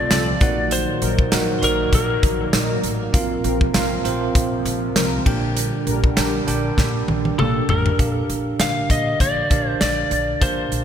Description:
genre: 1980s-style pop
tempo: 99 BPM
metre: 4/4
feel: swing 55% on 16ths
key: Bb major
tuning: A4 = 440 Hz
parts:
  - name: lightly driven lead guitar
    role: melody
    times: 0.0-2.5, 7.4-10.8 s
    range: A4 to F5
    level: -23 LUFS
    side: left 2 dB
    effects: ping-pong delay
  - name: bell-like tine electric piano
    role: accompaniment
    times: 0.0-10.8 s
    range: Bb2 to G5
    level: -24 LUFS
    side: right 4 dB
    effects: fast stereo tremolo
  - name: sweeping resonant pad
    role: sustained chords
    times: 0.0-8.0 s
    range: C3 to Bb3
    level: -28 LUFS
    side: left 1 dB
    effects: chorus
  - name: upright bass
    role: bass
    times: 0.0-10.8 s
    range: A1 to C2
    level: -26 LUFS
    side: left 1 dB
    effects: none
  - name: mellow synth brass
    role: stabs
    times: 0.1-7.6 s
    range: F3 to Bb4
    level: -28 LUFS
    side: left 2 dB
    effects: chorus
  - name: modern studio drum kit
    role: drums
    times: 0.1-10.8 s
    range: crash cymbal, hi-hat, kick drum, snare drum, tambourine, toms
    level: -21 LUFS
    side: equal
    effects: none
room: moderate lush hall reverb, RT60 2.9 s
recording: bright 1980s-style digital production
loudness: -17 LUFS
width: side -9 dB against mid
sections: 0.0-8.0 A section; 8.0-10.8 B section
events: drum fill 6.8-8.0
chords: 0.4 Ebm/Bb; 3.1 Bbsus2; 5.3 Gm/Bb; 8.0 Bb6

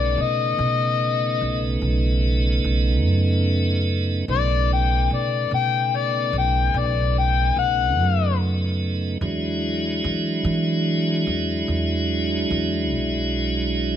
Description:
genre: slow blues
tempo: 49 BPM (dotted quarters)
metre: 12/8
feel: straight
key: unclear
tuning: A4 = 437 Hz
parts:
  - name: overdriven harmonica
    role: melody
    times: 0.0-8.4 s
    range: D5 to G5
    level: -22 LUFS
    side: left 11 dB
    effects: none
  - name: tonewheel organ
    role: sustained chords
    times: 0.0-14.0 s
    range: C#3 to E4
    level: -25 LUFS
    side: right 1 dB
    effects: slow rotary speaker
  - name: upright bass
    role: bass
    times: 0.0-14.0 s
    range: B1 to E3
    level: -22 LUFS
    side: right 1 dB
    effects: none
room: light reverb, small room ambience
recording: none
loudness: -19 LUFS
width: side -10 dB against mid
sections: 0.0-14.0 A section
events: none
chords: 0.0 B9; 9.2 E9

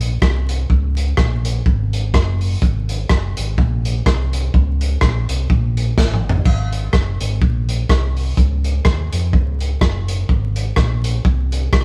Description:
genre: ska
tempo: 125 BPM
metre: 4/4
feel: swing 56% on 8ths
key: Db major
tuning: A4 = 439 Hz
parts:
  - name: fingered electric bass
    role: bass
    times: 0.0-11.8 s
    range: Gb1 to F2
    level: -21 LUFS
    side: equal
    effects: none
  - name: crunchy breakbeat drum kit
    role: drums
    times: 0.0-11.8 s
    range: hi-hat, kick drum, rim click, snare drum, splash cymbal, toms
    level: -20 LUFS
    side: equal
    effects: none
room: light reverb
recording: band playing live in one room, vinyl crackle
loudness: -18 LUFS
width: mono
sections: 0.0-11.8 A section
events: drum fill 6.0-6.5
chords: none

